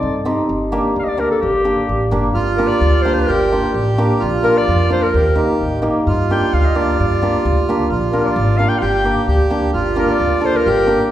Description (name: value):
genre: klezmer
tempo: 130 BPM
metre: 2/4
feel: straight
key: G minor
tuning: A4 = 440 Hz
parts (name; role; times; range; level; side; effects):
- clear clarinet; melody; 0.0-11.0 s; G4 to G5; -19 LUFS; left 2 dB; none
- upright bass; bass; 0.0-10.9 s; G1 to G2; -19 LUFS; equal; none
- hammered dulcimer; accompaniment; 0.3-11.0 s; Bb3 to A4; -19 LUFS; equal; none
- accordion; second line; 2.3-11.1 s; F4 to G4; -20 LUFS; right 5 dB; none
room: wet recital hall reverb, RT60 1.6 s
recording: heard from further back in the room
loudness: -14 LUFS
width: side -12 dB against mid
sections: 0.0-2.4 A section; 2.4-9.7 B section; 9.7-11.1 B section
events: none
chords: 0.5 Gm; 4.2 Bb; 5.1 Eb; 6.1 Gm; 7.9 Bb; 8.8 Gm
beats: 0.03 | 0.50 0.96 | 1.43 1.90 | 2.36 2.83 | 3.29 3.75 | 4.21 4.68 | 5.14 5.60 | 6.06 6.52 | 6.98 7.45 | 7.91 8.36 | 8.82 9.28 | 9.74 10.20 | 10.66